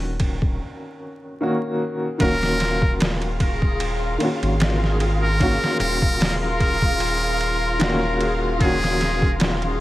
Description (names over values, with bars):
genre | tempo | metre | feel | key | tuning
trip hop | 75 BPM | 4/4 | swing 55% on 16ths | Eb minor | A4 = 440 Hz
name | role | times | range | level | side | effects
warm upright piano | accompaniment | 0.0-9.8 s | Eb3 to Gb4 | -25 LUFS | left 1 dB | tremolo, tape echo
round analog bass | bass | 0.0-9.8 s | Eb1 to Ab1 | -25 LUFS | equal | none
trip hop sampler-style drum kit | drums | 0.2-9.8 s | hi-hat, kick drum, ride cymbal, snare drum | -23 LUFS | equal | overdrive, small room ambience
trumpet with metal mute | melody | 2.2-9.3 s | Ab4 to Bb4 | -25 LUFS | equal | dub echo
muted studio violin section | sustained chords | 2.2-9.8 s | F4 to F5 | -29 LUFS | left 2 dB | none
backwards swelling texture | texture | 3.1-9.8 s | Ab4 | -33 LUFS | equal | built-in reverb
room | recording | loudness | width
light reverb, small room reverb | vinyl crackle | -18 LUFS | side -16 dB against mid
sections
0.0-2.2 A section; 2.2-9.8 B section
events
break 0.6-2.2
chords
0.0 Ebm7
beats
0.60 1.40 | 2.20 3.00 3.80 4.60 | 5.40 6.20 7.00 7.80 | 8.60 9.40